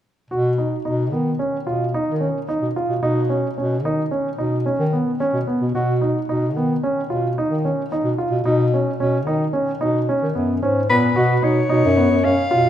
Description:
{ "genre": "contemporary instrumental, chamber music in an uneven meter", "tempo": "110 BPM", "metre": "5/4", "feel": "straight", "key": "B lydian", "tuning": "A4 = 439 Hz", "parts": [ { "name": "warm grand piano", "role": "arpeggios", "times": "0.3-12.7 s", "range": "B3 to F#4", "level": "-21 LUFS", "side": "right 2 dB", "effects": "none" }, { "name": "mellow bass clarinet", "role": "bass", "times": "0.3-12.7 s", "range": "F#2 to D#3", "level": "-21 LUFS", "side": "left 1 dB", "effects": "none" }, { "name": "breathy soprano saxophone", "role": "melody", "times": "10.9-12.7 s", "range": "B4 to E#5", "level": "-20 LUFS", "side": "left 4 dB", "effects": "none" } ], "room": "moderate concert hall reverb, RT60 2.0 s", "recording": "recorded in a church or concert hall", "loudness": "-18 LUFS", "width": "side -10 dB against mid", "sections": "0.3-11.2 A section; 11.2-12.7 B section", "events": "none", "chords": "0.3 Badd9", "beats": "| 0.31 0.85 1.40 1.94 2.48 | 3.02 3.57 4.11 4.65 5.19 | 5.74 6.28 6.82 7.37 7.91 | 8.45 8.99 9.54 10.08 10.62 | 11.16 11.71 12.25" }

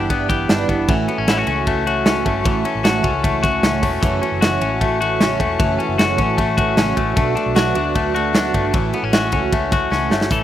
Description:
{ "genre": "jangly indie pop", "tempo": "153 BPM", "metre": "4/4", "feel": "straight", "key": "A mixolydian", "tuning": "A4 = 438 Hz", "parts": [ { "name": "picked plugged-in twelve-string acoustic guitar", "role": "accompaniment", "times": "0.0-10.4 s", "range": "E2 to F#4", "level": "-23 LUFS", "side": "right 8 dB", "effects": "none" }, { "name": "rich studio string section", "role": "sustained chords", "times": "0.0-10.3 s", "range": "F#4 to B5", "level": "-30 LUFS", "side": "left 1 dB", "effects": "none" }, { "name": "clean electric guitar", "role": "arpeggios", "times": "0.0-10.4 s", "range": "E3 to A4", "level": "-20 LUFS", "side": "left 5 dB", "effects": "slapback echo" }, { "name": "vintage muted fingered electric bass", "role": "bass", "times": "0.0-10.4 s", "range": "E1 to D2", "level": "-25 LUFS", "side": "equal", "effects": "none" }, { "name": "big rock drum kit", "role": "drums", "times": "0.1-10.4 s", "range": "hi-hat, kick drum, ride cymbal, snare drum", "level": "-20 LUFS", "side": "right 1 dB", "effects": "none" } ], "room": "little or no reverb", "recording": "recorded outdoors, with no room sound", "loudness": "-15 LUFS", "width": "side -11 dB against mid", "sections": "0.0-10.3 A section", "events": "drum fill 9.9-10.3", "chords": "0.0 Em7; 0.9 A6; 4.0 F#m7; 7.2 Bm7; 8.7 A6", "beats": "0.10 0.49 | 0.89 1.28 1.67 2.06 | 2.46 2.85 3.24 3.63 | 4.03 4.42 4.81 5.21 | 5.60 5.99 6.38 6.78 | 7.17 7.56 7.95 8.35 | 8.74 9.13 9.53 9.92 | 10.31" }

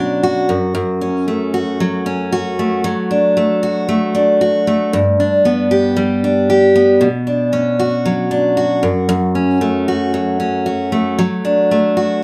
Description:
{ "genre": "pop", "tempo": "115 BPM", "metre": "4/4", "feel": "straight", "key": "unclear", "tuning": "A4 = 439 Hz", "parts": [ { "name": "picked steel-string acoustic guitar", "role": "solo", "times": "0.0-12.2 s", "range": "F#2 to G4", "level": "-16 LUFS", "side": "equal", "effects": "none" } ], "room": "moderate studio reverb, RT60 0.5 s", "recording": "none", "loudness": "-15 LUFS", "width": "mono", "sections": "0.0-12.2 A section", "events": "none", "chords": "0.5 F#m; 2.8 D/F#; 4.9 G; 7.0 Bmadd9; 8.8 F#m; 11.2 D/F#", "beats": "0.23 | 0.75 1.27 1.80 2.32 | 2.84 3.36 3.88 4.40 | 4.92 5.44 5.96 6.49 | 7.01 7.53 8.05 8.57 | 9.09 9.62 10.14 10.66 | 11.18 11.70 12.23" }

